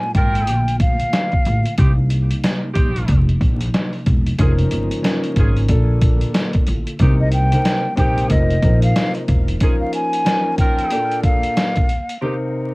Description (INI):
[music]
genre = hip hop, boom-bap hip-hop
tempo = 92 BPM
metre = 4/4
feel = swing 61% on 16ths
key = unclear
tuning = A4 = 441 Hz
[part]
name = breathy mellow silver concert flute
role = melody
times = 0.0-1.7, 7.2-12.2 s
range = Eb5 to Ab5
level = -22 LUFS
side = equal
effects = high-pass filter, low-pass filter, cassette tape
[part]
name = mellow tonewheel organ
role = sustained chords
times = 0.0-12.2 s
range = Bb2 to A4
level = -30 LUFS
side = equal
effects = chorus vibrato, fast rotary speaker, high-pass filter, low-pass filter, cassette tape
[part]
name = trip hop sampler-style drum kit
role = drums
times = 0.1-12.2 s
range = hi-hat, kick drum, snare drum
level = -18 LUFS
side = equal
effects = cassette tape
[part]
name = clear saxophone section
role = stabs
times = 0.2-12.3 s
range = C4 to Bb4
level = -29 LUFS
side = right 2 dB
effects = high-pass filter, low-pass filter, cassette tape, analog delay
[part]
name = upright bass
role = bass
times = 0.2-9.5 s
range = E1 to C2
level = -18 LUFS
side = equal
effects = tube saturation
[part]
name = dark grand piano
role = accompaniment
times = 4.4-12.7 s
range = Bb2 to Bb4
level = -23 LUFS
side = left 1 dB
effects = high-pass filter, low-pass filter, cassette tape
[sound]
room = little or no reverb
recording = home recording on cassette, vinyl crackle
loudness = -15 LUFS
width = side -24 dB against mid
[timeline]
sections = 0.0-12.7 A section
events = break 0.0-4.4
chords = 0.5 Bbmaj7; 1.8 Cm7; 3.1 F7sus4; 4.4 Db6/F; 5.7 Bbmaj7; 7.0 Cm7; 8.3 F7sus4; 9.6 Db6/F; 10.9 Bbmaj7; 12.2 Cm7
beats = 0.48 1.13 | 1.78 2.44 3.09 3.74 | 4.39 5.04 5.70 6.35 | 7.00 7.65 8.30 8.96 | 9.61 10.26 10.91 11.56 | 12.22